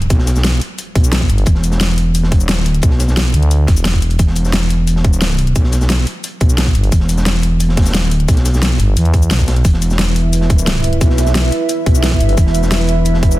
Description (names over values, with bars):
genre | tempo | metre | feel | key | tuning
dark technical drum and bass | 176 BPM | 4/4 | straight | E minor | A4 = 440 Hz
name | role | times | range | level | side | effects
metallic wobble bass | bass | 0.0-13.4 s | E1 to B1 | -14 LUFS | equal | chorus
dubstep drum kit | drums | 0.0-13.4 s | cabasa, hi-hat, snare drum | -20 LUFS | left 1 dB | overdrive
crunchy breakbeat drum kit | drums | 0.1-13.3 s | hi-hat, snare drum | -27 LUFS | equal | high-pass filter on hats, high-pass filter on snare, high-pass filter on room
electronic kick drum | drums | 0.1-13.3 s | none | -12 LUFS | equal | none
growling FM bass | bass | 1.3-4.2, 6.8-9.6, 12.2-12.4 s | E1 to E2 | -12 LUFS | equal | none
dark analog pad | sustained chords | 9.9-13.4 s | E4 to E5 | -19 LUFS | right 3 dB | chorus, sidechain pumping
room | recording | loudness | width
little or no reverb | dense, heavily limited modern master | -11 LUFS | side -17 dB against mid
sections
0.0-13.4 A section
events
none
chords
0.0 E5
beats
| 0.10 0.44 0.78 1.12 | 1.47 1.81 2.15 2.49 | 2.83 3.17 3.51 3.85 | 4.19 4.53 4.88 5.22 | 5.56 5.90 6.24 6.58 | 6.92 7.26 7.60 7.94 | 8.28 8.62 8.97 9.31 | 9.65 9.99 10.33 10.67 | 11.01 11.35 11.69 12.03 | 12.38 12.72 13.06